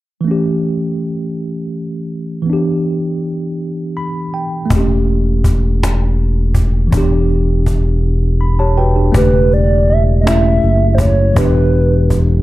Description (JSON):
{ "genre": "slow six-eight R&B", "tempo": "54 BPM (dotted quarters)", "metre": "6/8", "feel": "straight", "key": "unclear", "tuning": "A4 = 441 Hz", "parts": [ { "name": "mellow tine electric piano", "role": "accompaniment", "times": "0.2-12.4 s", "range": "C#3 to B5", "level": "-17 LUFS", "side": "right 1 dB", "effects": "medium stereo tremolo" }, { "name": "smooth synth bass", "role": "bass", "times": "4.7-12.4 s", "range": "E1 to F#1", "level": "-13 LUFS", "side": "equal", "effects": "none" }, { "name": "cajon", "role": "drums", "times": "4.7-12.3 s", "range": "none", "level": "-18 LUFS", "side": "equal", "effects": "none" }, { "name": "hollow clarinet-like synth lead", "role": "melody", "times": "9.2-12.2 s", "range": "B4 to E5", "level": "-16 LUFS", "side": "right 1 dB", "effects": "chorus, slapback echo" } ], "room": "digital ambience", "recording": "dark, warm production", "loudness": "-12 LUFS", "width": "side -16 dB against mid", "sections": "0.3-9.1 A section; 9.1-12.4 B section", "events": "tine electric piano fill 3.6-4.7, 8.0-9.1; drums muted 8.0-9.1", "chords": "0.3 A7/E; 2.5 Em7; 4.7 A7/E; 6.9 Em7; 9.1 A7/E; 11.4 Em7", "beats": "| 0.26 1.37 | 2.48 3.59 | 4.70 5.81 | 6.92 8.03 | 9.14 10.26 | 11.37" }